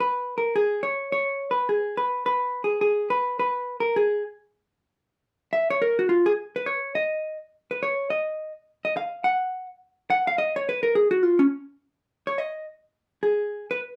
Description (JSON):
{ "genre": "jazz", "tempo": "210 BPM", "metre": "4/4", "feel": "swing 62% on 8ths", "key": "Db mixolydian", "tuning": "A4 = 440 Hz", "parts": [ { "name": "vintage hollow-body jazz guitar", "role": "solo", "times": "0.0-13.8 s", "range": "Db4 to Gb5", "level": "-25 LUFS", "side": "equal", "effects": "none" } ], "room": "moderate studio ambience, RT60 0.5 s", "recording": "none", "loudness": "-25 LUFS", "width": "mono", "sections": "0.0-12.9 A section; 12.9-14.0 B section", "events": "hollow-body jazz guitar solo 0.0-12.9", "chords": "none" }